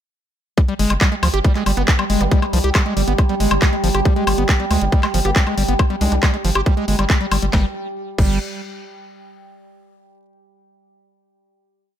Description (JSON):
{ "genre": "psychedelic trance", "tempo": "138 BPM", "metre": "4/4", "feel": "straight", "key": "G major", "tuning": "A4 = 440 Hz", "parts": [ { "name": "overtone-sweeping drone", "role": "sustained chords", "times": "1.2-7.6 s", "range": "G3 to G4", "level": "-25 LUFS", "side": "right 2 dB", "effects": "chorus, built-in reverb, sidechain pumping" }, { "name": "screaming distorted acid line", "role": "riff", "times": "0.6-8.4 s", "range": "F3 to G4", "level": "-22 LUFS", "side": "moving between left 4 dB and right 6 dB", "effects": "distortion, chorus, auto-pan, sidechain pumping, digital delay" }, { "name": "drum and bass drum kit", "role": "drums", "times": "0.6-8.3 s", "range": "crash cymbal, handclaps, hi-hat, snare drum, woodblock", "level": "-23 LUFS", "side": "left 2 dB", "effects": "overdrive" }, { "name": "electronic kick drum", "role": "drums", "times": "0.6-8.3 s", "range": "none", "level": "-16 LUFS", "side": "equal", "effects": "overdrive" }, { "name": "round analog bass", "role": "bass", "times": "0.8-8.4 s", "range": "G1 to D2", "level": "-19 LUFS", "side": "equal", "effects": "none" }, { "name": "resonant blip pluck", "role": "second line", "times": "1.8-6.2 s", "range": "B3 to D4", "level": "-32 LUFS", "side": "right 2 dB", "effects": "none" } ], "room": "light reverb", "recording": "none", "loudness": "-15 LUFS", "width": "side -10 dB against mid", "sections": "0.6-7.5 drop; 7.5-9.3 final note", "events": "drop 0.6-7.5", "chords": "0.6 G5; 7.5 N.C.", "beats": "| 0.58 1.01 1.45 1.88 | 2.31 2.75 3.19 3.62 | 4.05 4.49 4.92 5.36 | 5.79 6.23 6.66 7.10 | 7.53 7.97" }